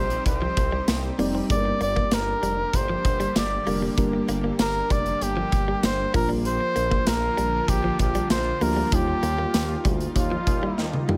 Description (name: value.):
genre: 1980s-style pop.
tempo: 97 BPM.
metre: 4/4.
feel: straight.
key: unclear.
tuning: A4 = 441 Hz.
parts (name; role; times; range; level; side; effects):
clear flugelhorn; melody; 0.0-11.1 s; F4 to D5; -29 LUFS; equal; none.
mellow FM electric piano; accompaniment; 0.0-11.2 s; F3 to Eb5; -32 LUFS; equal; chorus.
shimmering ambient pad; sustained chords; 0.0-11.2 s; D3 to G4; -37 LUFS; equal; chorus, built-in reverb.
direct-recorded clean electric guitar; riff; 0.0-11.2 s; F3 to C4; -35 LUFS; equal; subtle chorus.
smooth synth bass; bass; 0.0-11.2 s; F1 to Eb2; -32 LUFS; equal; none.
big rock drum kit; drums; 0.1-11.2 s; hi-hat, kick drum, snare drum, tambourine, toms; -28 LUFS; equal; none.
room: light reverb, small room ambience.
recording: none.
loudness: -24 LUFS.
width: mono.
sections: 0.0-11.2 A section.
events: drum fill 10.8-11.2.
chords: 0.0 Cm; 1.5 Gm; 6.1 Bb; 8.9 Ebadd9.